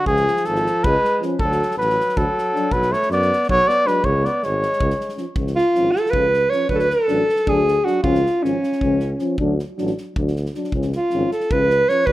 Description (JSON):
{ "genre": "balkan folk, Balkan brass band", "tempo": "314 BPM (eighths)", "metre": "7/8", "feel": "straight", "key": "C# phrygian dominant", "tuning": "A4 = 437 Hz", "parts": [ { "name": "mellow cornet", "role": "melody", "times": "0.0-5.2 s", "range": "G#4 to D5", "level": "-18 LUFS", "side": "equal", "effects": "none" }, { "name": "warm alto saxophone", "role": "second line", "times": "0.0-12.1 s", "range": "E#3 to C#5", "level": "-20 LUFS", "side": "right 1 dB", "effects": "none" }, { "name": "warm tuba", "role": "bass", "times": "0.1-12.1 s", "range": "G#1 to F#2", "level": "-24 LUFS", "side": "equal", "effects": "none" }, { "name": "natural country drum kit", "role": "percussion", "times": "0.1-12.1 s", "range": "kick drum, snare drum", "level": "-28 LUFS", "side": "equal", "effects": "none" }, { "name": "dark euphonium", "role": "accompaniment", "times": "1.2-12.1 s", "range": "E#3 to F#3", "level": "-30 LUFS", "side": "right 5 dB", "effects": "none" }, { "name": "warm euphonium", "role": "accompaniment", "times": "1.2-12.1 s", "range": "C#4 to D4", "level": "-26 LUFS", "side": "left 4 dB", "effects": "none" } ], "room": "moderate plate reverb, RT60 1.5 s, small room ambience", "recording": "rough home demo mix", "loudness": "-17 LUFS", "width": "side -16 dB against mid", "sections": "0.0-5.4 A section; 5.4-12.1 B section", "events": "alto saxophone solo 5.4-12.1", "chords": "0.1 C#; 1.4 D; 2.7 Bm; 4.0 C#5; 5.4 C#; 6.7 D; 8.0 C#; 9.4 D; 10.7 C#", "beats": "| 0.07 0.25 0.44 0.63 0.82 1.01 1.20 | 1.39 1.58 1.77 1.96 2.14 2.33 2.52 | 2.71 2.90 3.09 3.28 3.47 3.66 3.85 | 4.04 4.23 4.42 4.61 4.80 4.99 5.18 | 5.37 5.56 5.75 5.94 6.13 6.32 6.51 | 6.70 6.89 7.09 7.28 7.47 7.66 7.85 | 8.04 8.24 8.43 8.62 8.81 9.00 9.20 | 9.39 9.58 9.77 9.96 10.15 10.35 10.54 | 10.73 10.92 11.11 11.30 11.50 11.69 11.88 | 12.07" }